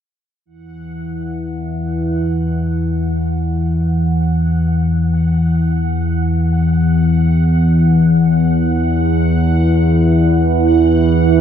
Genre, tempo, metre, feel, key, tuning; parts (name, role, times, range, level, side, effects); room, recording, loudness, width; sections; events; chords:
dark ambient drone; free time; A4 = 440 Hz
analog drone; drone; 0.7-11.4 s; E2 to E3; -13 LUFS; equal; chorus
bubbling stepped-filter texture; texture; 0.5-11.4 s; F#5; -27 LUFS; right 3 dB; chorus, built-in reverb
moderate huge ambient reverb, RT60 7.2 s; dark, warm production, nothing above 10.9 kHz; -13 LUFS; side -9 dB against mid
0.5-11.4 A section
fade-in on synth texture 0.5-11.4
0.5 Esus2